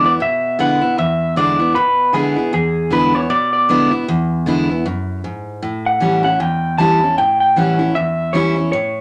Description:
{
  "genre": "rock",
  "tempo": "155 BPM",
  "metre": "4/4",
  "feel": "swing 58% on 8ths",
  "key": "E mixolydian",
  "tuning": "A4 = 440 Hz",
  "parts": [
    { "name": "electric guitar through a small old amp", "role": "melody", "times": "0.0-9.0 s", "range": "G#4 to A5", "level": "-18 LUFS", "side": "equal", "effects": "none" },
    { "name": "picked steel-string acoustic guitar", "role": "accompaniment", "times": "0.0-9.0 s", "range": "E2 to E4", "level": "-20 LUFS", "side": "equal", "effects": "none" }
  ],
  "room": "wet studio reverb, RT60 0.5 s",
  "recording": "none",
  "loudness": "-16 LUFS",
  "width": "mono",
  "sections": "0.0-9.0 A section",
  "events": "none",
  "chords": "0.0 E7; 5.6 A7"
}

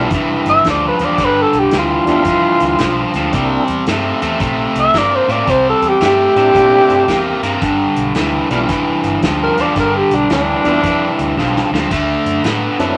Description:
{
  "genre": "electric blues shuffle",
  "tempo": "112 BPM",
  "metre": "4/4",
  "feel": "swing 65% on 8ths",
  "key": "G mixolydian",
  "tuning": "A4 = 439 Hz",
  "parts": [
    { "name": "tonewheel organ", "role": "accompaniment", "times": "0.0-13.0 s", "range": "F#3 to F4", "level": "-22 LUFS", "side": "equal", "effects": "overdrive, chorus vibrato, slow rotary speaker" },
    { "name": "cranked stack guitar", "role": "riff", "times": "0.0-13.0 s", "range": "G2 to B3", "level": "-18 LUFS", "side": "equal", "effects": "overdrive" },
    { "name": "vintage muted fingered electric bass", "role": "bass", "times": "0.0-12.9 s", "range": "F1 to Bb2", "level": "-27 LUFS", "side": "equal", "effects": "none" },
    { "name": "vintage drum kit", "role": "drums", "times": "0.1-12.9 s", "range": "crash cymbal, hi-hat, kick drum, snare drum", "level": "-24 LUFS", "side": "equal", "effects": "none" },
    { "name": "growling tenor saxophone", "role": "melody", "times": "0.5-11.4 s", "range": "D4 to E5", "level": "-16 LUFS", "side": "equal", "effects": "none" }
  ],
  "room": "wet studio reverb, RT60 0.5 s",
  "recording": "none",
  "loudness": "-14 LUFS",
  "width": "mono",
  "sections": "0.0-13.0 A section",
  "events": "drum fill 11.4-11.9",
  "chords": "0.0 G9; 3.3 C9; 7.6 G9; 11.9 D9"
}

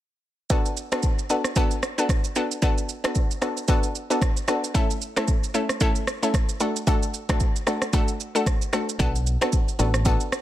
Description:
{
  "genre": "afrobeats",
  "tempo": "113 BPM",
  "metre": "4/4",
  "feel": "swing 58% on 16ths",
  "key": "B minor",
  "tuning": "A4 = 440 Hz",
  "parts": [
    { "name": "analog pluck", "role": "accompaniment", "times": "0.5-10.2 s", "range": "A3 to A4", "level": "-26 LUFS", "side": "left 1 dB", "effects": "chorus" },
    { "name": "afro-pop drum kit", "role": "drums", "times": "0.5-10.4 s", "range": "kick drum, rim click, shaker", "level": "-23 LUFS", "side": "equal", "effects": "soft clipping on snare" },
    { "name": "deep dub fingered electric bass", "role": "bass", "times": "9.0-10.2 s", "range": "A1 to B1", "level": "-23 LUFS", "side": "equal", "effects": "none" }
  ],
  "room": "digital ambience",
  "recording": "dense, heavily limited modern master",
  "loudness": "-21 LUFS",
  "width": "side -13 dB against mid",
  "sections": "0.5-10.4 A section",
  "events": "none",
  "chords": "0.5 Bm7; 4.7 A; 6.6 D; 9.0 Bm7"
}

